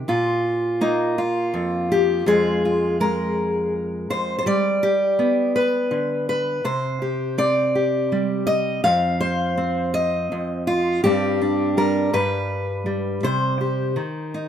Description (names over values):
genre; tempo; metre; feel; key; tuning
folk, solo fingerstyle acoustic guitar; 55 BPM (dotted quarters); 6/8; straight; C minor; A4 = 439 Hz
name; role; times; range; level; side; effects
fingerpicked steel-string acoustic guitar; solo; 0.0-14.5 s; F2 to F5; -19 LUFS; equal; none
room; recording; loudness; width
moderate studio reverb, RT60 0.5 s; rough home demo mix; -19 LUFS; side -9 dB against mid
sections
0.0-14.5 A section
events
none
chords
0.1 Bb5; 2.3 Fm; 4.5 G; 6.6 Csus2; 8.8 F5; 11.0 Gsus4; 12.1 N.C.; 13.2 Cm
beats
| 0.07 1.17 | 2.26 3.36 | 4.46 5.55 | 6.65 7.75 | 8.84 9.94 | 11.04 12.13 | 13.23 14.33